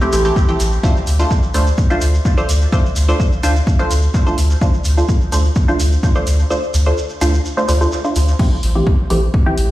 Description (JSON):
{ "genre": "dub techno", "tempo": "127 BPM", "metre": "4/4", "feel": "straight", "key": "unclear", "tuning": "A4 = 440 Hz", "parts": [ { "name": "filtered dub chord stab", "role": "stabs", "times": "0.0-9.7 s", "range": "E3 to C5", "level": "-19 LUFS", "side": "equal", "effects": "chorus, phaser, sidechain pumping, dub echo" }, { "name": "shekere", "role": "percussion", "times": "0.0-8.4 s", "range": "none", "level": "-29 LUFS", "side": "right 2 dB", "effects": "none" }, { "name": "soft dub sub bass", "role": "bass", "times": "0.1-9.7 s", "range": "A1 to D2", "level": "-14 LUFS", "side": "equal", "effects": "sidechain pumping" }, { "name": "deep house drum kit", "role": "drums", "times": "0.1-9.7 s", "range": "crash cymbal, hi-hat", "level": "-29 LUFS", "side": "left 1 dB", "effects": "overdrive" }, { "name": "electronic kick drum", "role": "drums", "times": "0.4-9.4 s", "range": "none", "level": "-15 LUFS", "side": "equal", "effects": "overdrive" } ], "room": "light reverb", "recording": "played on a big sound system in a bare room, stone room reverb", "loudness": "-13 LUFS", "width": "side -16 dB against mid", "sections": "0.0-8.4 A section; 8.4-9.7 A section", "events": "kick drops out 6.5-8.4", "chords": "0.0 Am7; 0.8 Dm7; 8.4 Am7", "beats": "0.36 | 0.83 1.31 1.78 2.25 | 2.73 3.20 3.67 4.14 | 4.62 5.09 5.56 6.03 | 6.50 6.98 7.45 7.92 | 8.39 8.87 9.34" }